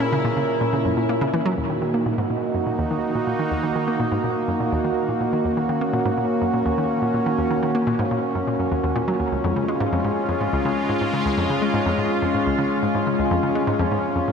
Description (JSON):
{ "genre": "ambient, sequencer-driven space music", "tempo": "124 BPM", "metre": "4/4", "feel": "straight", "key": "Eb minor", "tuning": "A4 = 440 Hz", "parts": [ { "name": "breathy flute-like synth lead", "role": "melody", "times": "0.0-1.1 s", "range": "A#4", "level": "-30 LUFS", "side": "right 2 dB", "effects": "chorus, tremolo, tape echo" }, { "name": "sweeping resonant pad", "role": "sustained chords", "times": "0.0-14.3 s", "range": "A#2 to Gb4", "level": "-21 LUFS", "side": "equal", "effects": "chorus" }, { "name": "hollow square pluck", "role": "riff", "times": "0.0-14.3 s", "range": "Db2 to C#4", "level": "-24 LUFS", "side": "equal", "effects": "chorus, tape echo" } ], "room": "wet huge ambient reverb, RT60 7.9 s", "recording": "dreamy mix soaked in reverb", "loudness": "-20 LUFS", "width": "side -6 dB against mid", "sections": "0.0-1.6 A section; 1.6-14.3 B section", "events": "none", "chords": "0.0 F#; 1.6 Ebm; 9.3 Db" }